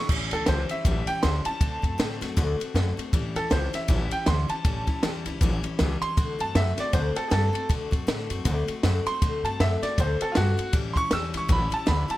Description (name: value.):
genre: rockabilly.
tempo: 158 BPM.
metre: 4/4.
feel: swing 59% on 8ths.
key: unclear.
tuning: A4 = 440 Hz.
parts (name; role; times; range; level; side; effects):
bright upright piano; melody; 0.0-12.2 s; F4 to E6; -29 LUFS; right 1 dB; none.
picked steel-string acoustic guitar; accompaniment; 0.0-12.2 s; A2 to F#4; -32 LUFS; left 4 dB; none.
upright bass; bass; 0.1-12.1 s; A1 to A2; -27 LUFS; equal; none.
compact cocktail drum kit; drums; 0.1-12.2 s; crash cymbal, kick drum, ride cymbal, snare drum; -27 LUFS; equal; none.
room: small room ambience.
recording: none.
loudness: -23 LUFS.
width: side -16 dB against mid.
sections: 0.1-12.2 A section.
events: none.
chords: 0.1 A7; 1.6 D7; 3.1 A7; 6.2 D7; 10.7 A7.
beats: | 0.10 0.48 0.86 1.24 | 1.62 2.00 2.38 2.76 | 3.14 3.52 3.90 4.28 | 4.66 5.04 5.42 5.80 | 6.18 6.56 6.94 7.32 | 7.70 8.08 8.46 8.84 | 9.22 9.60 9.98 10.36 | 10.74 11.12 11.50 11.88.